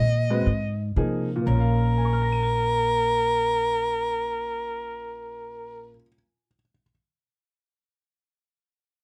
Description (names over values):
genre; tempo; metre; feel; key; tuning
modal jazz; 120 BPM; 4/4; swing 67% on 8ths; Bb minor; A4 = 440 Hz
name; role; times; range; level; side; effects
clear soprano saxophone; melody; 0.0-6.0 s; Bb4 to Eb5; -27 LUFS; equal; none
upright bass; bass; 0.0-6.0 s; Bb1 to C3; -27 LUFS; equal; none
clear concert grand piano; accompaniment; 0.3-6.9 s; Bb2 to Ab7; -33 LUFS; equal; none
room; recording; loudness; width
light reverb; close, detailed microphones; -24 LUFS; mono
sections
0.0-1.5 A section; 1.5-5.5 B section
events
none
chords
0.0 Bb9sus4; 1.5 Bbm